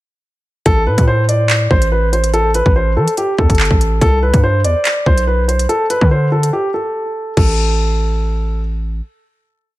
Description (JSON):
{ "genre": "hip hop, drill", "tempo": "143 BPM", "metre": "4/4", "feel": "half-time", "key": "A minor", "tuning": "A4 = 440 Hz", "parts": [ { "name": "dark baby grand piano", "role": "melody", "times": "0.7-8.6 s", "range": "G4 to D5", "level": "-17 LUFS", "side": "equal", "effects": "digital delay" }, { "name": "distorted 808-style bass", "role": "bass", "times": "0.7-9.0 s", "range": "G1 to E3", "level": "-15 LUFS", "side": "equal", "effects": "distortion" }, { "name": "drill drum kit", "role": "drums", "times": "0.7-7.5 s", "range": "crash cymbal, handclaps, hi-hat, kick drum", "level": "-15 LUFS", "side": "equal", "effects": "vintage 12-bit sampler grit" } ], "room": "light reverb, digital ambience", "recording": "none", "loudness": "-12 LUFS", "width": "side -17 dB against mid", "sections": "0.7-7.4 verse; 7.4-9.8 final note", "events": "break 6.5-7.4", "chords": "0.7 A5; 4.0 C5; 5.7 D5; 7.4 N.C." }